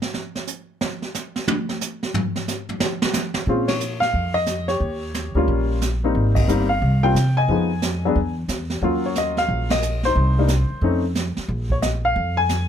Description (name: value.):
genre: jazz piano trio.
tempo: 180 BPM.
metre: 4/4.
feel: swing 64% on 8ths.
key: Bb minor.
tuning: A4 = 440 Hz.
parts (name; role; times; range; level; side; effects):
jazz brush drum kit; drums; 0.0-12.7 s; brushed snare drum, hi-hat, kick drum, ride cymbal, snare drum, toms; -25 LUFS; right 2 dB; none.
warm upright piano; melody; 3.5-12.7 s; F3 to Ab5; -21 LUFS; left 2 dB; none.
upright bass; bass; 3.5-12.7 s; G1 to C3; -22 LUFS; equal; none.
room: little or no reverb.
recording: none.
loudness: -19 LUFS.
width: side -9 dB against mid.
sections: 0.0-3.5 A section; 3.5-12.7 B section.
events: drum solo 0.0-3.5; band accent 3.6, 6.3, 9.7.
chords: 0.0 N.C.; 3.5 Bbm; 4.8 Eb9; 6.2 Abmaj9; 7.5 Fm7b5; 8.2 N.C.; 8.8 Ebm9; 10.2 Cm; 10.8 F7b13; 11.5 Bb5.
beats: 0.14 0.48 | 0.81 1.15 1.48 1.81 | 2.15 2.48 2.81 3.15 | 3.48 3.81 4.15 4.48 | 4.82 5.15 5.48 5.82 | 6.15 6.49 6.82 7.15 | 7.49 7.82 8.16 8.49 | 8.82 9.16 9.49 9.83 | 10.16 10.50 10.83 11.16 | 11.50 11.83 12.17 12.50.